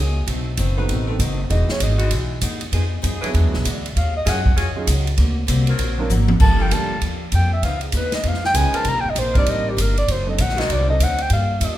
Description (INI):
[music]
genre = jazz, big band swing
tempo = 196 BPM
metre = 4/4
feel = swing 62% on 8ths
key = G minor from 6.4 s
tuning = A4 = 440 Hz
[part]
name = picked acoustic archtop guitar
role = accompaniment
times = 0.0-11.8 s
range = B2 to A4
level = -30 LUFS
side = left 2 dB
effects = none
[part]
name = upright bass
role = bass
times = 0.0-11.8 s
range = E1 to G2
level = -20 LUFS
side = equal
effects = none
[part]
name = swinging big-band drum kit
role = drums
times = 0.3-11.7 s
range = crash cymbal, hi-hat, kick drum, ride cymbal, snare drum, toms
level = -23 LUFS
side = equal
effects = none
[part]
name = warm baby grand piano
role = accompaniment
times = 0.8-11.0 s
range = D#3 to B4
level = -29 LUFS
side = right 4 dB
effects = none
[part]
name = mellow saxophone section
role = sustained chords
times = 0.8-11.0 s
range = D#3 to Cb5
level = -30 LUFS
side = left 2 dB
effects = none
[part]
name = mellow clarinet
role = melody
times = 1.5-11.8 s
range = G4 to Bb5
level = -23 LUFS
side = equal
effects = none
[sound]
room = moderate large studio reverb, RT60 1.4 s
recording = minimal, uncompressed stereo recording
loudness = -17 LUFS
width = side -14 dB against mid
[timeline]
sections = 0.0-6.4 A section; 6.4-11.8 A section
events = clarinet solo 0.0-11.8; drum fill 6.1-6.4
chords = 0.3 B7b9; 1.5 Emaj9; 2.7 Fm7b5; 3.3 E9; 4.0 Ebm11; 5.2 D7b13; 6.4 Gm9; 7.6 C#9; 8.9 Cm9; 10.1 D7b9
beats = | 0.28 0.58 0.89 1.20 | 1.50 1.81 2.11 2.42 | 2.73 3.03 3.34 3.65 | 3.95 4.26 4.57 4.87 | 5.18 5.48 5.79 6.10 | 6.40 6.71 7.02 7.32 | 7.63 7.94 8.24 8.55 | 8.86 9.16 9.47 9.78 | 10.08 10.39 10.70 11.00 | 11.31 11.62